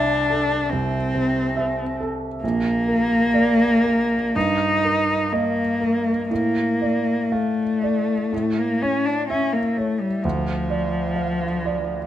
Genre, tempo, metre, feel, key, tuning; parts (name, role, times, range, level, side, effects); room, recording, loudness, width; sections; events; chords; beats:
classical, romantic duo for cello and grand piano; 56-72 BPM; 4/4; rubato; D minor; A4 = 440 Hz
rich cello; melody; 0.0-12.1 s; F3 to Eb4; -20 LUFS; left 1 dB
clear grand piano; accompaniment; 0.0-12.1 s; Bb1 to F5; -25 LUFS; right 3 dB
light reverb; close, detailed microphones; -19 LUFS; side -12 dB against mid
0.0-12.1 A section
0.0 Am/C; 2.4 Bb; 4.3 Eb/G; 6.3 Dm/A; 8.3 A; 10.2 Dm
0.71 1.56 | 2.43 3.33 4.35 5.32 | 6.30 7.31 8.32 9.29 | 10.24 11.15